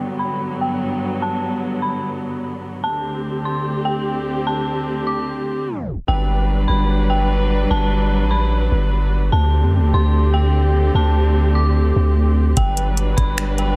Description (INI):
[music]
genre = hip hop, atmospheric cloud-rap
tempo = 148 BPM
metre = 4/4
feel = half-time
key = G major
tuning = A4 = 440 Hz
[part]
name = dark detuned synth bell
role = melody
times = 0.0-13.8 s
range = G5 to D6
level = -28 LUFS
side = equal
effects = chorus, low-pass filter, delay
[part]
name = muted chamber string section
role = sustained chords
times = 0.0-13.8 s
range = D2 to B4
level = -24 LUFS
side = equal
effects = sidechain pumping
[part]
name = long sustained 808-style bass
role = bass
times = 6.1-13.8 s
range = G1 to F#2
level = -19 LUFS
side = equal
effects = none
[part]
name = smooth R&B drum kit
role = drums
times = 12.6-13.7 s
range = finger snaps, hi-hat, kick drum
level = -22 LUFS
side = equal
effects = none
[sound]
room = light reverb, digital ambience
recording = tape stop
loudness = -19 LUFS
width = mono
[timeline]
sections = 0.0-6.1 A section; 6.1-13.8 B section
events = tape stop 5.7-6.1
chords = 0.0 Gmaj7; 2.8 D7sus4; 6.1 Gmaj7; 9.3 D7sus4; 12.6 Gmaj7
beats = 0.00 0.41 0.81 | 1.22 1.62 2.03 2.43 | 2.84 3.24 3.65 4.05 | 4.46 4.87 5.27 5.68 | 6.08 6.49 6.89 7.30 | 7.70 8.11 8.52 8.92 | 9.33 9.73 10.14 10.54 | 10.95 11.35 11.76 12.16 | 12.57 12.97 13.38